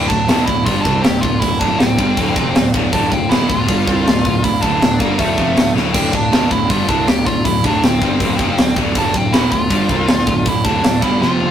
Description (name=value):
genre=heavy metal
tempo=159 BPM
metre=4/4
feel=straight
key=D minor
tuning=A4 = 442 Hz
part: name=nasal lead guitar with a parked wah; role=melody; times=0.0-11.5 s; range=A3 to G4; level=-20 LUFS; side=right 1 dB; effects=overdrive
part: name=rich chamber string section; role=sustained chords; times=0.0-11.5 s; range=D4 to C6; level=-28 LUFS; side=equal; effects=none
part: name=distorted electric guitar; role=riff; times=0.0-11.5 s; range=D2 to C4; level=-24 LUFS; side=left 2 dB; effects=overdrive
part: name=heavy high-gain guitar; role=riff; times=0.0-11.5 s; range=D2 to C4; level=-25 LUFS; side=left 6 dB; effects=distortion
part: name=sludgy distorted guitar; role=riff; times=0.0-11.5 s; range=D2 to C4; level=-22 LUFS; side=right 2 dB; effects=overdrive
part: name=fuzz picked electric bass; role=bass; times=0.0-11.5 s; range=D1 to C2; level=-22 LUFS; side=equal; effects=overdrive
part: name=tight metal drum kit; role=drums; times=0.1-11.5 s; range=crash cymbal, hi-hat, kick drum, snare drum, toms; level=-17 LUFS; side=equal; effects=none
room=light reverb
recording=rough rehearsal-room recording, tube saturation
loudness=-13 LUFS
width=side -9 dB against mid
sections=0.0-11.5 A section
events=drum fill 5.8, 11.2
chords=0.0 Dm